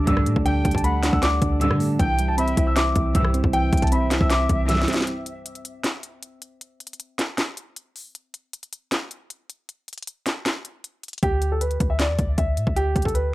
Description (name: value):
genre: hip hop, trap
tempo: 156 BPM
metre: 4/4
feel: half-time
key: unclear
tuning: A4 = 438 Hz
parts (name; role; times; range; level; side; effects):
- dark concert grand piano; melody; 0.0-5.1, 11.2-13.3 s; G4 to E6; -26 LUFS; left 1 dB; low-pass filter, tape echo
- soft electric-piano-like synth keys; accompaniment; 0.0-5.1 s; D3 to E5; -25 LUFS; right 2 dB; chorus, low-pass filter
- glass harmonica; sustained chords; 0.0-5.0 s; C4 to A5; -36 LUFS; left 1 dB; none
- clean 808-style bass; bass; 0.0-4.9, 11.2-13.3 s; B1 to D3; -23 LUFS; equal; none
- warm symphonic string section; stabs; 0.1-5.0 s; A1 to E3; -29 LUFS; equal; none
- trap drum kit; drums; 0.1-13.2 s; handclaps, hi-hat, kick drum, rim click, snare drum; -25 LUFS; equal; none
- jazz flute; second line; 0.5-5.0 s; E5 to G5; -31 LUFS; right 1 dB; tape echo
room: small room ambience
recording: dry, gritty hardware recording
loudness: -20 LUFS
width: side -17 dB against mid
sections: 0.0-5.1 A section; 5.1-13.3 B section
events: drum fill 4.7-5.1; break 5.1-11.2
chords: 0.0 Dsus4; 2.0 C; 5.1 N.C.; 11.2 D5